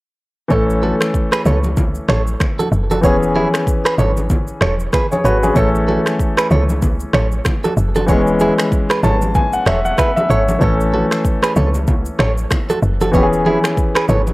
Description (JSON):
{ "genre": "afrobeats", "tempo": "95 BPM", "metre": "4/4", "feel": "swing 58% on 16ths", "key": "A major", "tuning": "A4 = 441 Hz", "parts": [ { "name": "warm grand piano", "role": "accompaniment", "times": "0.5-14.3 s", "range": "E3 to A5", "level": "-18 LUFS", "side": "left 1 dB", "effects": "none" }, { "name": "direct-recorded clean electric guitar", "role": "riff", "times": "0.5-14.2 s", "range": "E4 to C#5", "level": "-20 LUFS", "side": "right 3 dB", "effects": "analog delay" }, { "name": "woody log drum bass", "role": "bass", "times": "0.5-14.3 s", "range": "E1 to C#2", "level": "-18 LUFS", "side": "equal", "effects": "none" }, { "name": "afro-pop drum kit", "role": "drums", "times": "0.5-14.3 s", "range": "finger snaps, kick drum, rim click, shaker", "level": "-18 LUFS", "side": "equal", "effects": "none" }, { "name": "congas", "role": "percussion", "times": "0.8-14.3 s", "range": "none", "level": "-24 LUFS", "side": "left 1 dB", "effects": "none" } ], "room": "light reverb", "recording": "dry, gritty hardware recording, transformer saturation", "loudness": "-13 LUFS", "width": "side -20 dB against mid", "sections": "0.5-14.3 A section", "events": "grand piano fill 8.7-10.6", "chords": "0.5 A; 3.0 E6; 5.6 A; 8.1 E6; 10.6 A; 13.1 E6" }